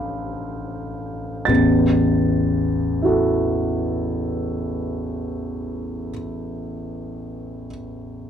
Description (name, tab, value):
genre	classical, impressionist solo piano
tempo	32-41 BPM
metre	4/4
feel	rubato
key	unclear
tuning	A4 = 440 Hz
part	clear concert grand piano	solo	0.0-8.3 s	A1 to A6	-21 LUFS	equal	none
room	moderate studio reverb, RT60 0.8 s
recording	dark, warm production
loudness	-20 LUFS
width	side -9 dB against mid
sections	0.0-1.5 A section; 1.5-7.5 B section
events	slowing down 0.0-1.5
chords	0.0 Am11; 1.5 A5